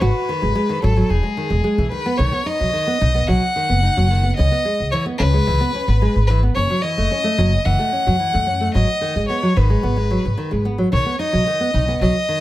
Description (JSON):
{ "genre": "folktronica", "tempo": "110 BPM", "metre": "4/4", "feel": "straight", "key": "unclear", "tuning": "A4 = 438 Hz", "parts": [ { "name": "rich violin", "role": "melody", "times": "0.0-12.4 s", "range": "G#4 to F#5", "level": "-21 LUFS", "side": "left 1 dB", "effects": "tape echo" }, { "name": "nylon-string guitar", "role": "arpeggios", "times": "0.0-12.4 s", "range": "D#3 to F#4", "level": "-22 LUFS", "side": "equal", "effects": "none" }, { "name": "upright bass", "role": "bass", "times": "0.0-12.1 s", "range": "E1 to F#2", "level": "-18 LUFS", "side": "equal", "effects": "none" } ], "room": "small room ambience", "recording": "none", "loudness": "-16 LUFS", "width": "side -15 dB against mid", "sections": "0.0-2.2 A section; 2.2-12.4 B section", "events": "none", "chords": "0.0 G#m7; 1.1 Emaj7; 2.2 B; 4.4 C#m7; 6.6 F#m7; 8.7 G#m7; 10.9 B", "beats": "| 0.01 0.56 1.10 1.65 | 2.20 2.74 3.29 3.83 | 4.38 4.92 5.47 6.01 | 6.56 7.11 7.65 8.20 | 8.74 9.29 9.83 10.38 | 10.92 11.47 12.02" }